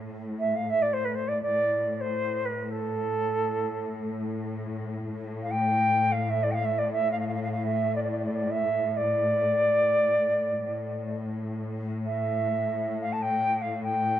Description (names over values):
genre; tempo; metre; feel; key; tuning
Turkish makam ensemble; free time; none; none; A makam ussak; A4 = 440 Hz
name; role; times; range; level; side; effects
warm studio cello section; drone; 0.0-14.2 s; A2; -31 LUFS; left 2 dB; none
silver concert flute; melody; 0.4-14.2 s; A4 to A5; -25 LUFS; right 1 dB; none
room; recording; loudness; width
light reverb, small room ambience; rough home demo mix; -25 LUFS; side -11 dB against mid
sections
0.0-14.2 A section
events
none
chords
none